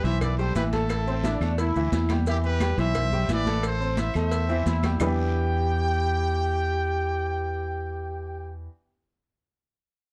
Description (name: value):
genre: latin, salsa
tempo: 175 BPM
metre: 4/4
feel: straight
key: E minor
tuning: A4 = 440 Hz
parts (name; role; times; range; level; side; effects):
- bright trumpet section; melody; 0.0-8.5 s; E4 to G5; -33 LUFS; equal; none
- bright upright piano; accompaniment; 0.0-8.7 s; E3 to E6; -34 LUFS; equal; none
- fingered electric bass; bass; 0.0-8.7 s; A1 to E2; -28 LUFS; equal; none
- congas; percussion; 0.0-5.1 s; none; -34 LUFS; equal; none
- guiro; percussion; 0.0-5.1 s; none; -48 LUFS; equal; none
- maracas; percussion; 0.0-5.1 s; none; -51 LUFS; equal; none
- claves; percussion; 0.2-5.1 s; none; -43 LUFS; equal; none
- cowbell and bongos; percussion; 0.2-5.1 s; none; -38 LUFS; equal; none
- bright trombone section; second line; 1.1-2.2, 4.5-8.5 s; C4 to G4; -34 LUFS; equal; none
room: light reverb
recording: dark, warm production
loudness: -25 LUFS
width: mono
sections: 0.0-5.0 A section; 5.0-7.7 B section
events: none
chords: 0.0 Em; 0.9 Am; 2.3 Em7; 3.6 Am; 5.0 Em7